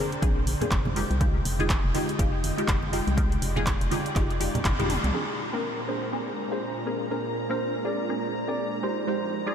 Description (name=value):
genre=deep house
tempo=122 BPM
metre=4/4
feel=swing 59% on 16ths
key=unclear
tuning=A4 = 439 Hz
part: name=soft string machine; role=sustained chords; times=0.0-9.5 s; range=Bb2 to G5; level=-35 LUFS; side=equal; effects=phaser, ensemble chorus, sidechain pumping
part: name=filtered dub chord stab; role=stabs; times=0.0-9.5 s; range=Ab3 to Bb4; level=-30 LUFS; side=equal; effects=phaser, sidechain pumping, ping-pong delay
part: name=deep house drum kit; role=drums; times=0.1-5.1 s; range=handclaps, hi-hat, toms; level=-33 LUFS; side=equal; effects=overdrive, low-pass filter on hats, low-pass filter on snare, low-pass filter on toms
part: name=organ-like FM bass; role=bass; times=0.2-5.1 s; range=F1 to C2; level=-28 LUFS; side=equal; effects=tube saturation
part: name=electronic kick drum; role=drums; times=0.2-4.8 s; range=none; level=-27 LUFS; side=equal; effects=overdrive
part: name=congas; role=percussion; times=0.5-4.9 s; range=none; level=-34 LUFS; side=right 1 dB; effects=none
part: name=overdriven tine electric piano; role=melody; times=5.1-9.5 s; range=Ab4 to D5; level=-32 LUFS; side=right 1 dB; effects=diffuse ambient delay
part: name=dark studio violin section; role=texture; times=5.1-9.5 s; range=Bb5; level=-39 LUFS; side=left 3 dB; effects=none
room=moderate huge ambient reverb, RT60 7.6 s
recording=dreamy mix soaked in reverb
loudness=-24 LUFS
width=side -8 dB against mid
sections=0.0-5.1 A section; 5.1-9.5 B section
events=filter sweep on synth stab 0.0-5.1; drum fill 4.7-5.1; band accent 4.7; filter sweep on string machine 5.1-9.5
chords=0.0 Bb9; 1.0 Fm9; 5.1 Bb9; 8.8 Fm9